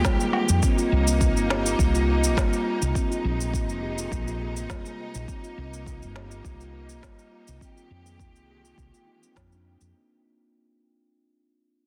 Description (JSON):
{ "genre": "organic downtempo", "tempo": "103 BPM", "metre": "4/4", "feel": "straight", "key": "C minor", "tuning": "A4 = 444 Hz", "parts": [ { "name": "bright studio string section", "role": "sustained chords", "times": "0.0-9.9 s", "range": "C3 to G4", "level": "-35 LUFS", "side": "equal", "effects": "sidechain pumping" }, { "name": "steel tongue drum", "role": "arpeggios", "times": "0.0-9.9 s", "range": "G3 to G4", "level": "-31 LUFS", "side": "equal", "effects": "low-pass filter, tape echo" }, { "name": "woody fretless electric bass", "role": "bass", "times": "0.0-9.9 s", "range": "F1 to F2", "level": "-29 LUFS", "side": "equal", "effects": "subtle chorus" }, { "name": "electronic kick drum", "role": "drums", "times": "0.0-9.5 s", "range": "none", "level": "-28 LUFS", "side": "equal", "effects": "none" }, { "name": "electronic snare drum, shaker and woodblock", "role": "drums", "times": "0.0-9.9 s", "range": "none", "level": "-33 LUFS", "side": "equal", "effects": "overdrive" } ], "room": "moderate lush hall reverb, RT60 2.8 s", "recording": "dense, heavily limited modern master", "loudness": "-24 LUFS", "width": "mono", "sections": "0.0-9.9 A section", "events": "fade-out 0.0-9.9; filter sweep on steel tongue drum 0.0-9.9", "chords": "0.0 Fm9; 0.6 Cm7; 3.0 Bb9sus4; 5.3 Cm7; 7.6 Fm9" }